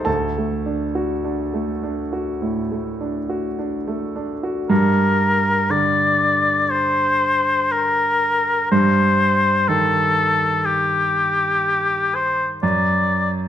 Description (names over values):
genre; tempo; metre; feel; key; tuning
classical, romantic duo for oboe and grand piano; 50-63 BPM; 4/4; rubato; G minor; A4 = 440 Hz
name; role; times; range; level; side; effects
clear concert grand piano; accompaniment; 0.0-13.5 s; D2 to A5; -21 LUFS; right 2 dB; none
clear oboe; melody; 4.7-13.3 s; G4 to D5; -17 LUFS; left 3 dB; none
room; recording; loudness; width
wet recital hall reverb, RT60 1.3 s; none; -17 LUFS; side -10 dB against mid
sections
0.0-4.7 A section; 4.7-13.5 B section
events
none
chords
0.1 D; 4.7 Gm; 8.7 Cm/G; 12.6 N.C.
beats
| 0.06 1.24 2.41 3.58 | 4.70 5.70 6.70 7.71 | 8.71 9.68 10.65 11.64 | 12.62